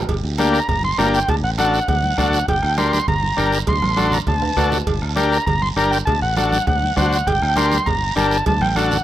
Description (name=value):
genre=latin, cumbia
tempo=200 BPM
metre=4/4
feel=straight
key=G harmonic minor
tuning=A4 = 440 Hz
part: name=fingered electric bass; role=bass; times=0.0-9.0 s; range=G1 to D2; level=-23 LUFS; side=equal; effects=none
part: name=bombo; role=percussion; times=0.1-8.9 s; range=none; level=-26 LUFS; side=equal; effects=none
part: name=congas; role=percussion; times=0.1-9.0 s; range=none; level=-27 LUFS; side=right 3 dB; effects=none
part: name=cowbell and timbales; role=percussion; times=0.1-8.6 s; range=none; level=-27 LUFS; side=right 6 dB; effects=none
part: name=guiro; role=percussion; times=0.1-9.0 s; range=none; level=-30 LUFS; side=right 10 dB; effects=none
part: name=combo organ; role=accompaniment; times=0.4-9.0 s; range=Bb3 to C5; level=-19 LUFS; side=left 3 dB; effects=none
part: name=combo organ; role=melody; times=0.5-9.0 s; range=F#5 to C6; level=-21 LUFS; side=right 1 dB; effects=tape echo
room=light reverb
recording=rough home demo mix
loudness=-16 LUFS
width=side -12 dB against mid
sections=0.1-9.0 A section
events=drum fill 3.7-4.9, 8.5-9.0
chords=0.1 Gm; 1.3 D; 2.5 Gm; 3.7 D7; 4.9 Gm; 6.1 D7; 7.3 Gm; 8.5 D